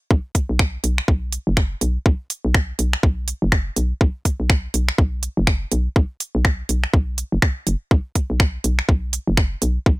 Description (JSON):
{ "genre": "minimal techno", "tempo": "123 BPM", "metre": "4/4", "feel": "swing 59% on 16ths", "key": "unclear", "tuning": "A4 = 435 Hz", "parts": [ { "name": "hollow knocking FM bass", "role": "bass", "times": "0.1-10.0 s", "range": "F#1 to B1", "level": "-21 LUFS", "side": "equal", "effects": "sidechain pumping" }, { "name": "electronic kick drum", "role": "drums", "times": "0.1-10.0 s", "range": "none", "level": "-17 LUFS", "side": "equal", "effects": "overdrive" }, { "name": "minimal click drum kit", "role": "drums", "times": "0.3-9.7 s", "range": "finger snaps, hi-hat", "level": "-21 LUFS", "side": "right 1 dB", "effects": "none" } ], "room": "little or no reverb", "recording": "none", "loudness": "-18 LUFS", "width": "side -20 dB against mid", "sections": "0.0-10.0 A section", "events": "none", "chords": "none", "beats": "| 0.11 0.59 1.08 1.57 | 2.06 2.54 3.03 3.52 | 4.01 4.50 4.98 5.47 | 5.96 6.45 6.93 7.42 | 7.91 8.40 8.89 9.37 | 9.86" }